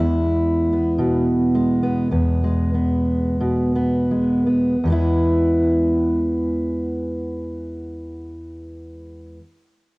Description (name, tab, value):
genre	folk, solo fingerstyle acoustic guitar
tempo	40-60 BPM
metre	4/4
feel	rubato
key	E major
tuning	A4 = 440 Hz
part	fingerpicked steel-string acoustic guitar	solo	0.0-9.4 s	E2 to E4	-18 LUFS	equal	none
room	moderate spring reverb, RT60 1.4 s, studio reverb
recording	home recording on cassette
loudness	-17 LUFS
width	side -23 dB against mid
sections	0.0-4.8 A section; 4.8-10.0 B section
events	slowing down 0.0-4.8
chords	0.0 E